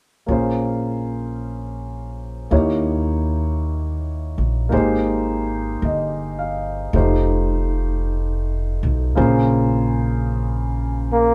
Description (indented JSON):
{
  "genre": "jazz ballad",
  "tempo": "54 BPM",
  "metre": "4/4",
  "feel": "swing 69% on 8ths",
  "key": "Bb dorian",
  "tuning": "A4 = 438 Hz",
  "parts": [
    { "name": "warm baby grand piano", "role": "accompaniment", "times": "0.3-11.3 s", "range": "Db3 to F5", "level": "-24 LUFS", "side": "equal", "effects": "none" },
    { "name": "upright bass", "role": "bass", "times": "0.3-11.3 s", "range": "F1 to Eb2", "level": "-24 LUFS", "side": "equal", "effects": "none" },
    { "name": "bright trombone", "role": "melody", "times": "11.1-11.3 s", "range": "Bb3", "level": "-16 LUFS", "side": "equal", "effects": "none" }
  ],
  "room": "moderate studio reverb, RT60 0.5 s",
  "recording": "band playing live in one room",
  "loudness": "-21 LUFS",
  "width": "mono",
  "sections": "0.3-9.2 A section; 9.2-11.3 B section",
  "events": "none",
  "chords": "0.3 Bbm9; 2.5 Eb7b9; 4.7 Abmaj9; 6.9 F7; 9.2 Bbm9"
}